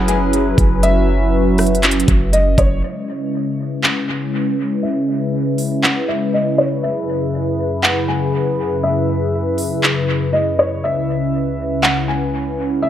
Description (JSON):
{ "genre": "hip hop, atmospheric cloud-rap", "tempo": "120 BPM", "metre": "4/4", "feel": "half-time", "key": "C# minor", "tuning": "A4 = 440 Hz", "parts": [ { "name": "felt-muted upright piano", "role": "melody", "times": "0.0-12.9 s", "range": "C#5 to G#5", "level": "-21 LUFS", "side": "left 1 dB", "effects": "low-pass filter, dub echo" }, { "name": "hollow soft pad", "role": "sustained chords", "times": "0.0-12.9 s", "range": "C#2 to C#5", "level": "-18 LUFS", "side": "equal", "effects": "chorus, sidechain pumping, low-pass filter" }, { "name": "warm 808-style bass", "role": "bass", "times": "0.0-2.8 s", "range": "F#1", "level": "-17 LUFS", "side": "equal", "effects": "none" }, { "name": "trap drum kit", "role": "drums", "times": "0.1-11.9 s", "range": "handclaps, hi-hat, kick drum, rim click", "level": "-18 LUFS", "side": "equal", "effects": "overdrive, dub echo" } ], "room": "moderate spring reverb, RT60 2.1 s", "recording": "echo-heavy mix", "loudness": "-15 LUFS", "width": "side -11 dB against mid", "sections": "0.0-2.8 A section; 2.8-12.9 B section", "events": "filter sweep 2.8-12.9", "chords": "0.0 F#7sus4; 2.8 C#m7; 6.8 F#7sus4; 10.8 C#m7" }